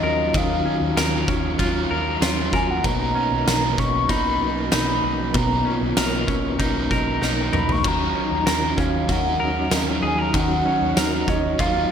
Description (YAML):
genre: dream pop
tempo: 96 BPM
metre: 4/4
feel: straight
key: Eb minor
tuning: A4 = 440 Hz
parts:
  - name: hollow clarinet-like synth lead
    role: melody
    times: 0.0-11.9 s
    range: Eb5 to C#6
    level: -25 LUFS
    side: equal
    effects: chorus, ping-pong delay
  - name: overdriven semi-hollow guitar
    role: accompaniment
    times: 0.0-11.9 s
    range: B2 to Bb4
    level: -28 LUFS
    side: right 5 dB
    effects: harmonic tremolo, lush chorus
  - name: mellow tonewheel organ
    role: sustained chords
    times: 0.0-11.9 s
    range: Eb3 to F4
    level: -27 LUFS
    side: equal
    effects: chorus vibrato, fast rotary speaker
  - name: semi-hollow electric guitar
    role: arpeggios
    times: 0.0-11.9 s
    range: B2 to Bb4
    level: -26 LUFS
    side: left 2 dB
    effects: lush chorus, ping-pong delay
  - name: vintage muted fingered electric bass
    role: bass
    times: 0.0-11.9 s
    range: B1 to Eb2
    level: -28 LUFS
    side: equal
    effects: none
  - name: oversized low-tuned drum kit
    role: drums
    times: 0.3-11.7 s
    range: crash cymbal, kick drum, ride cymbal, snare drum, tambourine, toms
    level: -24 LUFS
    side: equal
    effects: gated reverb
  - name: large celesta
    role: texture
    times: 4.4-10.8 s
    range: F4 to Eb5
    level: -37 LUFS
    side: left 1 dB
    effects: none
room: moderate lush hall reverb, RT60 2.1 s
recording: bright 1980s-style digital production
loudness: -19 LUFS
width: side -8 dB against mid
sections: 0.0-11.9 A section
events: drum fill 7.2-7.8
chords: 0.0 Ebm9; 2.8 Bmaj9; 7.8 Ebm9